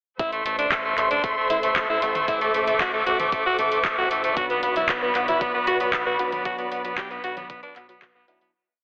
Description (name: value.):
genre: italo disco.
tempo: 115 BPM.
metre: 4/4.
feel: straight.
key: A dorian.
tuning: A4 = 437 Hz.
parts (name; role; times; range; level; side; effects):
raspy alto saxophone; melody; 0.2-8.5 s; A3 to G4; -26 LUFS; equal; digital delay.
muted studio string section; sustained chords; 0.2-8.5 s; F#4 to D6; -28 LUFS; equal; none.
fingered electric bass with an envelope filter; bass; 0.2-8.5 s; A1 to B1; -41 LUFS; equal; tube saturation.
electronic kick drum; drums; 0.2-8.1 s; none; -36 LUFS; equal; overdrive, small room ambience.
house drum kit; drums; 0.2-8.5 s; handclaps, hi-hat, toms; -31 LUFS; equal; small room ambience.
soft round pluck; arpeggios; 4.4-8.5 s; F#3 to F#5; -35 LUFS; equal; chorus, digital delay.
bell-like tine electric piano; stabs; 4.4-8.5 s; F#3 to F#4; -39 LUFS; equal; phaser.
room: moderate lush hall reverb, RT60 1.9 s, digital ambience.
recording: heavily compressed radio sound, multiband compression, telephone sound.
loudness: -23 LUFS.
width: mono.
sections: 0.2-8.5 chorus.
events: fade-out 5.8-8.5.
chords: 0.2 Am; 4.4 Bm.